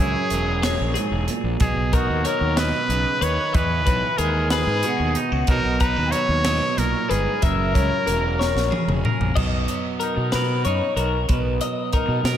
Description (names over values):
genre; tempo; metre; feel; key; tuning
math rock and midwest emo; 62 BPM (dotted quarters); 6/8; straight; B major; A4 = 440 Hz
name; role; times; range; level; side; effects
bright trumpet; melody; 0.0-9.0 s; F#4 to C#5; -24 LUFS; equal; none
twangy electric guitar; accompaniment; 0.0-12.4 s; F#2 to A#4; -27 LUFS; right 5 dB; spring reverb, slapback echo
twelve-string electric guitar; arpeggios; 0.0-12.4 s; F#4 to A#5; -26 LUFS; left 6 dB; slapback echo, analog delay
fuzz fingered electric bass; bass; 0.0-12.4 s; E1 to B2; -24 LUFS; equal; overdrive
crisp fusion drum kit; drums; 0.3-12.4 s; crash cymbal, hi-hat, kick drum, snare drum, toms; -25 LUFS; equal; none
room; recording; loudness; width
moderate lush hall reverb, RT60 2.5 s; big arena sound; -19 LUFS; side -10 dB against mid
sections
0.0-9.4 A section; 9.4-12.4 B section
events
drum fill 8.4-9.4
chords
0.0 F#9; 1.6 Bmaj9; 3.5 Emaj9; 5.5 Bmaj9; 7.4 F#9; 9.4 Bmaj7